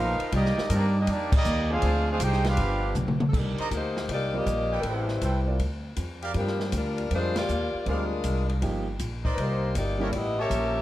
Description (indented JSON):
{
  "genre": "jazz, big band swing",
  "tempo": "159 BPM",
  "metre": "4/4",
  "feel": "swing 66% on 8ths",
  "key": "C minor",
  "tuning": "A4 = 440 Hz",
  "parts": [
    { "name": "clear trumpet section", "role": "melody", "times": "0.0-2.9 s", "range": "Bb3 to G5", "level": "-28 LUFS", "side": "right 1 dB", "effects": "none" },
    { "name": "muted trombone section", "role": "second line", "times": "0.0-2.9 s", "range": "F3 to G4", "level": "-34 LUFS", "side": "right 2 dB", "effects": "none" },
    { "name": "clear trombone section", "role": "sustained chords", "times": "0.0-3.2 s", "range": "Eb3 to Bb4", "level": "-35 LUFS", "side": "left 1 dB", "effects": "none" },
    { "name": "upright bass", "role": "bass", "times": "0.0-10.8 s", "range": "G1 to G2", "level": "-28 LUFS", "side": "equal", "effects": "none" },
    { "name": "open jazz drum kit", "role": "drums", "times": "0.2-10.6 s", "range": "crash cymbal, hi-hat, kick drum, ride cymbal, snare drum, toms", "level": "-31 LUFS", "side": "equal", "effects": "none" },
    { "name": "bright saxophone section", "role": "melody", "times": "3.3-10.8 s", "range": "F3 to E5", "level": "-30 LUFS", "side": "left 2 dB", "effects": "none" },
    { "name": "clear trumpet section", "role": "stabs", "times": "3.6-10.8 s", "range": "C4 to Bb5", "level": "-34 LUFS", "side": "right 1 dB", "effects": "none" },
    { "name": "clear grand piano", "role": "accompaniment", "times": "4.3-10.1 s", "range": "F3 to D5", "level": "-35 LUFS", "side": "right 2 dB", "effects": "none" }
  ],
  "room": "light reverb",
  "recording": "dark, warm production",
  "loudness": "-24 LUFS",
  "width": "side -14 dB against mid",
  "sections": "0.0-3.3 A section; 3.3-10.8 B section",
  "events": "band accent 1.3, 7.3; drum fill 3.0-3.3",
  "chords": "0.3 Cm9; 1.8 Dm7b5; 2.6 G7; 3.3 Cm9; 4.8 Am9; 5.6 Dm; 6.4 Gm7; 7.9 Dm7b5; 8.6 Gm7; 9.4 Cm9; 10.1 A7b9"
}